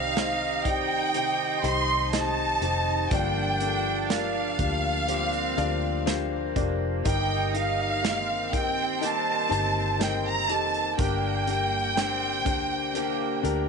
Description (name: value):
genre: pop ballad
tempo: 61 BPM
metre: 4/4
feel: straight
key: G minor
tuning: A4 = 439 Hz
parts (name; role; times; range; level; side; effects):
- warm studio violin section; melody; 0.0-13.7 s; F5 to C6; -27 LUFS; right 1 dB; none
- warm studio cello section; second line; 0.0-13.7 s; Bb3 to Eb4; -34 LUFS; right 14 dB; tape echo
- felt-muted upright piano; accompaniment; 0.0-13.7 s; G2 to F5; -31 LUFS; left 14 dB; none
- tonewheel organ; sustained chords; 0.0-13.7 s; D3 to G4; -39 LUFS; equal; slow rotary speaker
- picked acoustic archtop guitar; arpeggios; 0.0-13.7 s; G2 to G4; -36 LUFS; right 15 dB; none
- vintage muted fingered electric bass; bass; 0.0-13.7 s; F1 to D2; -32 LUFS; equal; none
- natural country drum kit; drums; 0.2-13.7 s; hi-hat, kick drum, snare drum; -30 LUFS; right 3 dB; none
room: small room ambience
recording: 1960s-style stereo with parts hard left and right, nothing above 10.8 kHz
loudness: -24 LUFS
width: side -5 dB against mid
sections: 0.0-13.7 A section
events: none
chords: 0.0 Cm; 3.1 Gm7; 7.0 Eb/G; 11.0 Gm